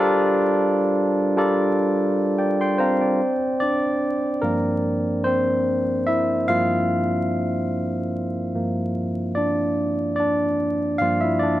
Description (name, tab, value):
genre	R&B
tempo	73 BPM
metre	4/4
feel	swing 55% on 16ths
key	G dorian from 3.2 s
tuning	A4 = 438 Hz
part	barky tine electric piano	solo	0.0-11.6 s	G2 to C6	-19 LUFS	equal	overdrive
room	moderate plate reverb, RT60 3.5 s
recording	vinyl crackle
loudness	-19 LUFS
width	side -14 dB against mid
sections	0.0-3.2 A section; 3.2-11.6 B section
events	tine electric piano solo 3.2-11.6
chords	0.0 Gm11; 3.2 Gm7